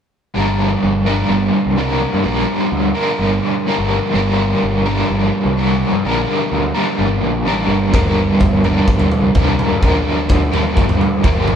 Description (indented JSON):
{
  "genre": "psychedelic rock",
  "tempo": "127 BPM",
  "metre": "4/4",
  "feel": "straight",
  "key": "G minor",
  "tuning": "A4 = 440 Hz",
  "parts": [
    { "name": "overdriven semi-hollow guitar", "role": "riff", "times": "0.3-11.6 s", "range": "G2 to Bb4", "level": "-15 LUFS", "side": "equal", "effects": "tremolo" },
    { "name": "growling picked electric bass", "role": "bass", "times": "0.4-11.5 s", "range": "G1 to G2", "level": "-20 LUFS", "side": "equal", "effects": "overdrive" },
    { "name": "raw garage drum kit", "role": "drums", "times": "7.9-11.6 s", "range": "kick drum, toms", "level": "-16 LUFS", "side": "equal", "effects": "none" }
  ],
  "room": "moderate stone room reverb, RT60 1.4 s",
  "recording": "band playing live in one room",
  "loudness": "-13 LUFS",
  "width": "side -8 dB against mid",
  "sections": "0.4-11.6 A section",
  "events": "none",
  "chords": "0.4 Gm"
}